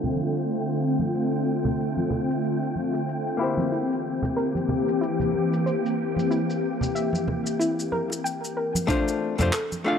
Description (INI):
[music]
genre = sunset chillout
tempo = 93 BPM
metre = 4/4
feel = swing 58% on 16ths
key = F major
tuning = A4 = 440 Hz
[part]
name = archtop guitar, miked and amplified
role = accompaniment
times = 0.0-10.0 s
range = A3 to F5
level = -27 LUFS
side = left 3 dB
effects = auto-pan, tape echo
[part]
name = ethereal airy pad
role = sustained chords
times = 0.0-8.8 s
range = D3 to G4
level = -25 LUFS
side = left 1 dB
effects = ensemble chorus, built-in reverb
[part]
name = jazz brush drum kit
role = drums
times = 0.0-9.8 s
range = handclaps, hi-hat, shaker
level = -33 LUFS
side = left 1 dB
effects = none
[part]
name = congas and bongos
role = percussion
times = 0.0-10.0 s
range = none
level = -30 LUFS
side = right 2 dB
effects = none
[part]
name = wind-like tuned noise texture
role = texture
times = 0.0-8.9 s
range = G5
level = -38 LUFS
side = right 1 dB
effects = built-in reverb
[part]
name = soft round pluck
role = arpeggios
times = 3.7-9.8 s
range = D4 to G5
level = -30 LUFS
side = equal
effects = lush chorus, tape echo
[part]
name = electronic kick drum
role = drums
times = 8.9-9.0 s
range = none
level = -27 LUFS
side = right 1 dB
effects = none
[part]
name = hollow-body short-scale fingered electric bass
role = bass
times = 9.4-9.5 s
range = F2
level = -24 LUFS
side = equal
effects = transformer saturation
[sound]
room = light reverb, studio reverb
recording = dry, gritty hardware recording, low-pass filter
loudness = -23 LUFS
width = side -7 dB against mid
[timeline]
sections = 0.0-8.9 A section; 8.9-10.0 B section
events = filter sweep on ambient pad 0.0-8.9; filter sweep 0.0-8.9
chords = 0.0 F6; 3.4 C7; 8.9 F6